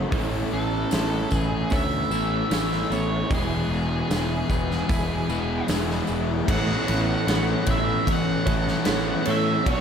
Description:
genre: rock, shoegaze and dream pop.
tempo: 75 BPM.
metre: 4/4.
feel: straight.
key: A major.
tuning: A4 = 440 Hz.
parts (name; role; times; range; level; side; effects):
twelve-string electric guitar; arpeggios; 0.0-9.8 s; E3 to A4; -36 LUFS; right 11 dB; ensemble chorus, slapback echo.
crunchy overdriven guitar; riff; 0.0-9.8 s; E2 to F#4; -30 LUFS; left 10 dB; analog chorus.
direct-recorded clean electric guitar; riff; 0.0-9.8 s; B2 to D5; -31 LUFS; right 9 dB; reverse reverb.
overdriven semi-hollow guitar; riff; 0.0-9.8 s; A2 to A4; -29 LUFS; left 1 dB; none.
fuzz picked electric bass; bass; 0.0-9.8 s; E1 to A2; -28 LUFS; equal; overdrive.
huge arena drum kit; drums; 0.1-9.8 s; hi-hat, kick drum, ride cymbal, snare drum; -27 LUFS; equal; none.
octave-fuzz lead guitar; melody; 0.5-9.8 s; G#4 to F#5; -30 LUFS; right 3 dB; distortion, slapback echo.
tambourine; percussion; 0.9-6.3 s; none; -43 LUFS; left 12 dB; none.
room: small room ambience.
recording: none.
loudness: -21 LUFS.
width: side -7 dB against mid.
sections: 0.0-6.5 A section; 6.5-9.8 B section.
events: none.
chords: 0.1 Aadd9; 3.3 E; 6.5 Aadd9.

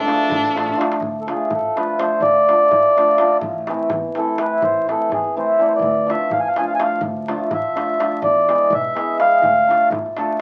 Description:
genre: balkan folk, Balkan wedding band.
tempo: 249 BPM (eighths).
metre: 5/8.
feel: straight.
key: D dorian sharp4.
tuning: A4 = 439 Hz.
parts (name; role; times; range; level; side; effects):
clear violin; melody; 0.0-0.8 s; D4; -24 LUFS; equal; none.
mellow accordion; second line; 0.0-9.9 s; G#4 to G#5; -20 LUFS; equal; none.
hammered dulcimer; accompaniment; 0.0-10.3 s; E3 to A4; -22 LUFS; equal; none.
upright bass; bass; 0.0-10.1 s; A1 to E2; -35 LUFS; equal; none.
darbuka; percussion; 0.1-10.3 s; none; -33 LUFS; equal; none.
room: wet studio ambience, RT60 0.5 s.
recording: very old 78 rpm record, vinyl crackle.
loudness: -18 LUFS.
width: mono.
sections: 0.0-1.0 A section; 1.0-10.4 B section.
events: drum fill 0.6-1.0; accordion solo 1.0-10.4.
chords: 0.0 Dm; 3.4 Am; 5.8 Dm; 8.2 E; 9.4 Dm.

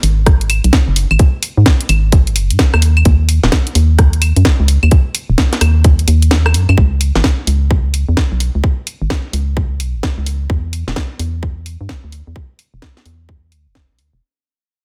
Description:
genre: UK garage, two-step garage.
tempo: 129 BPM.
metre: 4/4.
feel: swing 63% on 16ths.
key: unclear.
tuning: A4 = 440 Hz.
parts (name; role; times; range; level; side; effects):
organ-like FM bass; bass; 0.0-14.2 s; D#1 to G#2; -15 LUFS; equal; tube saturation.
garage drum kit; drums; 0.0-14.1 s; claves, hi-hat, rim click, snare drum; -19 LUFS; equal; studio reverb.
electronic kick drum; drums; 0.3-13.9 s; none; -15 LUFS; equal; studio reverb.
room: digital ambience.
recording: dense, heavily limited modern master.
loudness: -13 LUFS.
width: mono.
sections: 0.0-6.8 A section; 6.8-14.2 B section.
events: drop 0.0-6.8; kick drops out 6.3-6.8; fade-out 6.8-14.2.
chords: none.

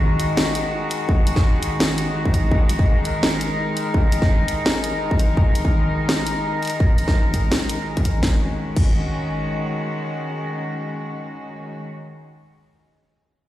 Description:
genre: half-time drum and bass.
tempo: 168 BPM.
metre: 4/4.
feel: swing 54% on 16ths, half-time.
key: Eb minor.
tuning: A4 = 440 Hz.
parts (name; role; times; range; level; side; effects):
clear studio cello section; sustained chords; 0.0-11.8 s; Eb3 to Bb4; -24 LUFS; left 1 dB; sidechain pumping.
drum and bass drum kit; drums; 0.2-8.9 s; crash cymbal, hi-hat, snare drum; -24 LUFS; equal; none.
electronic kick drum; drums; 1.1-8.9 s; none; -18 LUFS; equal; distortion.
room: moderate lush hall reverb, RT60 2.0 s.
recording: played on a big sound system in a bare room, large studio reverb, lossy compression artefacts.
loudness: -18 LUFS.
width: side -14 dB against mid.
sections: 0.0-8.2 A section; 8.2-11.1 B section.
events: none.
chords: 0.0 Ebm.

